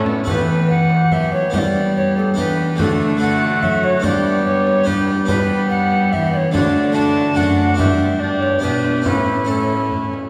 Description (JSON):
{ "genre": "classical, renaissance-style consort dance", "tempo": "143 BPM", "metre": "3/4", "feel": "straight", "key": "unclear", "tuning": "A4 = 436 Hz", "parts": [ { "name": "alto recorder", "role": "melody", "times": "0.0-9.9 s", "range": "A4 to A5", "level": "-23 LUFS", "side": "equal", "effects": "none" }, { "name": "mellow cor anglais", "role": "second line", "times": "0.0-10.1 s", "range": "E4 to G4", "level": "-27 LUFS", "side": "equal", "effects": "none" }, { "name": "harpsichord", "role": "accompaniment", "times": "0.0-10.3 s", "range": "F#2 to B4", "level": "-24 LUFS", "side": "equal", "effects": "none" }, { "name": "rich viola", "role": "accompaniment", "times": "0.0-10.1 s", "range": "A3 to D4", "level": "-28 LUFS", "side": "equal", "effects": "none" }, { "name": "rich cello", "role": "bass", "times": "0.0-10.1 s", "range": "F#2 to G3", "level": "-22 LUFS", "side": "equal", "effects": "none" }, { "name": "frame drum", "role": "percussion", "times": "0.1-10.3 s", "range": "none", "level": "-28 LUFS", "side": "equal", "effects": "none" } ], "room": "wet church reverb, RT60 3.7 s", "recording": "recorded in a church or concert hall", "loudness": "-17 LUFS", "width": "mono", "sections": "0.3-10.3 A section", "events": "none", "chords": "0.3 Em; 1.5 G; 2.8 D; 4.0 G; 6.5 D; 7.8 G; 9.1 A", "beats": "| 0.28 0.70 1.12 | 1.54 1.96 2.38 | 2.79 3.21 3.63 | 4.04 4.46 4.88 | 5.29 5.71 6.12 | 6.54 6.96 7.38 | 7.79 8.21 8.63 | 9.06 9.49 9.92" }